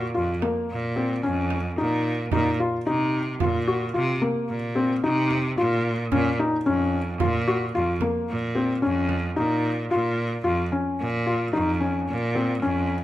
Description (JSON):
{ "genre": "contemporary instrumental, chamber music in an uneven meter", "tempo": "111 BPM", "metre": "7/4", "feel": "straight", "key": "Bb minor", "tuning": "A4 = 440 Hz", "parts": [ { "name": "felt-muted upright piano", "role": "arpeggios", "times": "0.0-12.9 s", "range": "Bb3 to Gb4", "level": "-24 LUFS", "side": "left 2 dB", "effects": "none" }, { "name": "bright cello", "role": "bass", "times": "0.0-13.0 s", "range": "F2 to C3", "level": "-26 LUFS", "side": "right 1 dB", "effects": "none" }, { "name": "frame drum", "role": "percussion", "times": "0.4-9.3 s", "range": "none", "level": "-31 LUFS", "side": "right 7 dB", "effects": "none" } ], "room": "light reverb", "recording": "close, detailed microphones", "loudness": "-22 LUFS", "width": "side -14 dB against mid", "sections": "0.0-9.9 A section; 9.9-13.0 B section", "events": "none", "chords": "0.0 Bbm; 2.3 F5/Bb; 6.1 Bbm" }